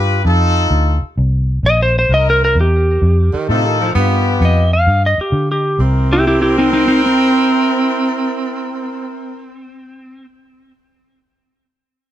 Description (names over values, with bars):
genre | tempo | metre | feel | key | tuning
electric blues shuffle | 130 BPM | 4/4 | swing 68% on 8ths | C mixolydian | A4 = 441 Hz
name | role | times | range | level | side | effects
clean lap steel guitar | melody | 0.0-10.3 s | C4 to F5 | -16 LUFS | equal | none
bright horn section | stabs | 0.0-9.5 s | B3 to B4 | -19 LUFS | left 4 dB | none
vintage muted fingered electric bass | bass | 0.0-9.5 s | Bb1 to D3 | -14 LUFS | equal | none
warm tenor saxophone | second line | 3.3-9.5 s | C3 to C4 | -20 LUFS | right 6 dB | digital delay
room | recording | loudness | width
light reverb | none | -12 LUFS | side -12 dB against mid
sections
0.0-5.8 A section; 5.8-9.5 B section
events
none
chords
0.3 F7; 2.1 C7; 3.0 F7; 3.9 G7; 5.8 C7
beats
| 0.25 0.71 1.17 1.64 | 2.10 2.56 3.02 3.48 | 3.94 4.40 4.86 5.32 | 5.78 6.24 6.70 7.16 | 7.62 8.09 8.55 9.01